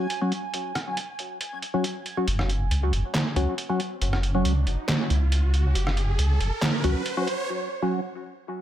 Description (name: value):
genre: deep dubstep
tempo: 138 BPM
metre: 4/4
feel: half-time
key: unclear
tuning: A4 = 437 Hz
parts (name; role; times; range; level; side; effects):
- percussive organ stab; stabs; 0.0-8.0 s; F#3 to F#4; -28 LUFS; left 1 dB; chorus, phaser, dub echo
- backwards swelling texture; texture; 0.0-2.3 s; G#5; -36 LUFS; right 3 dB; built-in reverb
- trip hop sampler-style drum kit; drums; 0.1-7.4 s; handclaps, hi-hat, rim click, snare drum; -28 LUFS; right 1 dB; overdrive, studio reverb
- deep soft wobble bass; bass; 2.3-6.9 s; F#1 to C#2; -22 LUFS; equal; chorus
- riser; sound effects; 3.8-7.5 s; none; -34 LUFS; right 2 dB; none
room: light reverb, digital ambience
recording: none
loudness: -23 LUFS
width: side -11 dB against mid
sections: 0.0-2.3 A section; 2.3-8.6 B section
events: filter sweep on synth stab 0.0-2.3; build-up 2.3-8.6; riser 3.8-7.5; break 7.5-8.6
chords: 0.0 F#5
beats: 0.10 | 0.54 0.97 1.41 1.84 | 2.28 2.71 3.15 3.58 | 4.02 4.45 4.89 5.32 | 5.76 6.19 6.62 7.06 | 7.50 7.93